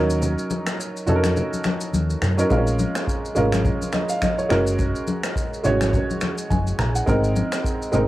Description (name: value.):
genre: afrobeats.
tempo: 105 BPM.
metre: 4/4.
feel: swing 58% on 16ths.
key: unclear.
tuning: A4 = 442 Hz.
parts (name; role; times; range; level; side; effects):
warm baby grand piano; accompaniment; 0.0-8.1 s; Gb3 to Bb5; -22 LUFS; right 2 dB; none.
vintage muted fingered electric bass; bass; 0.0-8.1 s; Gb1 to Gb2; -23 LUFS; equal; none.
unplugged drum kit; drums; 0.1-8.1 s; finger snaps, kick drum, rim click, shaker; -27 LUFS; equal; cassette tape.
congas; percussion; 0.2-8.1 s; none; -27 LUFS; left 3 dB; none.
room: little or no reverb.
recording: home recording on cassette.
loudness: -19 LUFS.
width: side -16 dB against mid.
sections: 0.0-8.1 A section.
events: break 0.0-2.5.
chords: 0.0 Ebm7; 2.5 Bbm7; 4.5 Gbadd9; 7.1 Abadd9.